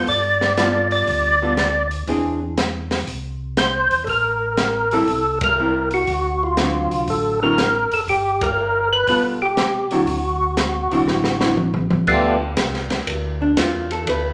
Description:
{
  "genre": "soul jazz organ trio",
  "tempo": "120 BPM",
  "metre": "4/4",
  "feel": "swing 67% on 8ths",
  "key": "unclear",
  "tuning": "A4 = 440 Hz",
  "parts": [
    { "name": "archtop guitar, miked and amplified", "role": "accompaniment", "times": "0.0-14.3 s", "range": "D3 to B4", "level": "-24 LUFS", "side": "equal", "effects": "none" },
    { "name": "mellow tonewheel organ", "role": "bass", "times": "0.0-14.3 s", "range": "F#1 to G2", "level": "-31 LUFS", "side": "equal", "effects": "slow rotary speaker" },
    { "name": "percussive tonewheel organ", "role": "melody", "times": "0.1-12.4 s", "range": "A3 to D5", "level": "-21 LUFS", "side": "equal", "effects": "slow rotary speaker, chorus vibrato" },
    { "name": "compact cocktail drum kit", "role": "drums", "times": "0.1-14.2 s", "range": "crash cymbal, hi-hat, kick drum, ride cymbal, snare drum, toms", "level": "-26 LUFS", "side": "equal", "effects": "none" }
  ],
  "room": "wet large studio reverb, RT60 0.8 s",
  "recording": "none",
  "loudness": "-19 LUFS",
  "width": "mono",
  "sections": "0.0-12.1 A section; 12.1-14.3 B section",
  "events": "band accent 5.3, 8.3; drum fill 11.1-12.1; hollow-body jazz guitar solo 12.1-14.3",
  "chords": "0.1 G9; 2.1 Eaug7; 4.1 Am7; 6.1 D7; 8.1 G9; 10.1 D9; 12.1 G9",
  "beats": "| 0.07 0.57 1.07 1.57 | 2.08 2.58 3.08 3.58 | 4.08 4.58 5.08 5.58 | 6.08 6.58 7.08 7.58 | 8.08 8.58 9.07 9.57 | 10.07 10.57 11.07 11.57 | 12.07 12.57 13.07 13.57 | 14.07"
}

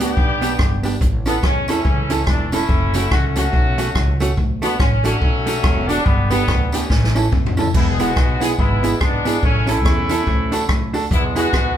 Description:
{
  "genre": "ska",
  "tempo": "143 BPM",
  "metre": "4/4",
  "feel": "swing 60% on 8ths",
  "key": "A major",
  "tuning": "A4 = 440 Hz",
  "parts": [
    { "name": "clear horn section", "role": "melody", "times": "0.0-11.8 s", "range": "D3 to G#4", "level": "-22 LUFS", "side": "left 1 dB", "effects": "none" },
    { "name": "hollow-body jazz guitar", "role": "accompaniment", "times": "0.0-11.5 s", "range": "A3 to A4", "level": "-23 LUFS", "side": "right 3 dB", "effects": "none" },
    { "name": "upright bass", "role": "bass", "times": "0.0-11.8 s", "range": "E1 to E2", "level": "-22 LUFS", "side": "equal", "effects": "none" },
    { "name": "swinging big-band drum kit", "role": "drums", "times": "0.0-11.7 s", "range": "crash cymbal, hi-hat, kick drum, rim click, snare drum, toms", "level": "-19 LUFS", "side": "equal", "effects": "none" },
    { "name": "tambourine", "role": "percussion", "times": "0.4-11.4 s", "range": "none", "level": "-36 LUFS", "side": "left 2 dB", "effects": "none" }
  ],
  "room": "moderate large studio reverb, RT60 0.9 s",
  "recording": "band playing live in one room",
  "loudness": "-15 LUFS",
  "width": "side -10 dB against mid",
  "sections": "0.0-7.7 A section; 7.7-11.8 B section",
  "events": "drum fill 6.9-7.7",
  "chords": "0.0 G; 1.0 A; 2.7 F#m; 4.4 D; 6.1 G; 6.9 A; 7.7 E; 9.4 A; 10.3 D; 11.1 E",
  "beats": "0.17 0.59 | 1.01 1.43 1.85 2.27 | 2.69 3.11 3.53 3.95 | 4.37 4.79 5.21 5.63 | 6.06 6.48 6.90 7.32 | 7.74 8.16 8.58 9.00 | 9.42 9.85 10.27 10.69 | 11.11 11.53"
}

